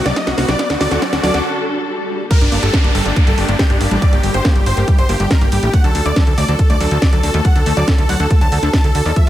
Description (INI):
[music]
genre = uplifting trance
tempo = 140 BPM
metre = 4/4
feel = straight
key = G harmonic minor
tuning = A4 = 440 Hz
[part]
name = big supersaw lead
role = melody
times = 0.0-9.3 s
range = D4 to A5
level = -21 LUFS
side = equal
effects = sidechain pumping, tape echo
[part]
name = warm grand piano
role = second line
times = 0.0-9.3 s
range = D4 to A5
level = -28 LUFS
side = equal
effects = none
[part]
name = dark studio string section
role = sustained chords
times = 0.0-9.3 s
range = C3 to A4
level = -25 LUFS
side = left 1 dB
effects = sidechain pumping
[part]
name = riser, swell and downlifter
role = sound effects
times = 0.0-5.7 s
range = none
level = -24 LUFS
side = equal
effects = none
[part]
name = wide unison pluck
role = arpeggios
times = 0.1-9.3 s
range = F3 to F#5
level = -24 LUFS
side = left 2 dB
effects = sidechain pumping, tape echo
[part]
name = plucky analog bass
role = bass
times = 0.1-9.3 s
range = G1 to Eb2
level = -18 LUFS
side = equal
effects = sidechain pumping
[part]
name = house drum kit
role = drums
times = 0.1-9.3 s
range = crash cymbal, hi-hat, snare drum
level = -22 LUFS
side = equal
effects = overdrive
[part]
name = electronic kick drum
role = drums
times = 0.2-9.2 s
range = none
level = -14 LUFS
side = equal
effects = overdrive, high-pass filter on kick, high-pass filter on room
[sound]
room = light reverb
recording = none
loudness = -12 LUFS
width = side -13 dB against mid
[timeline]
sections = 0.0-2.3 A section; 2.3-9.3 B section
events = build-up 0.0-2.3; drum fill 0.0-1.4; riser 0.0-1.4; break 1.4-2.3; swell 1.4-2.3; drop 2.3-9.3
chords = 0.0 Cm; 0.6 D; 2.3 Gm; 5.7 D